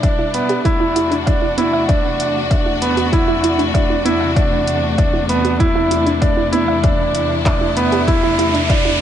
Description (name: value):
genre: piano and strings electronica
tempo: 97 BPM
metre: 4/4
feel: straight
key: unclear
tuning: A4 = 441 Hz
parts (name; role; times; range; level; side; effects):
- clear studio string section; sustained chords; 0.0-9.0 s; E2 to F#4; -20 LUFS; left 2 dB; sidechain pumping
- soft round pluck; arpeggios; 0.0-8.9 s; B3 to E5; -22 LUFS; right 4 dB; chorus, sidechain pumping, digital delay
- clear concert grand piano; riff; 0.0-8.9 s; B3 to E4; -18 LUFS; right 1 dB; digital delay
- deep house drum kit; drums; 0.0-8.8 s; handclaps, hi-hat; -27 LUFS; equal; overdrive, high-pass filter on hats, high-pass filter on snare
- electronic kick drum; drums; 0.0-8.8 s; none; -17 LUFS; left 1 dB; overdrive
- riser; sound effects; 6.7-9.0 s; none; -25 LUFS; right 1 dB; none
room: moderate echo chamber reverb, RT60 2.2 s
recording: nothing above 10.7 kHz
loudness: -14 LUFS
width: side -10 dB against mid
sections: 0.0-9.0 A section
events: build-up 0.0-9.0; riser 6.7-9.0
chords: 0.0 Em7; 0.7 D7/E; 5.6 C69/E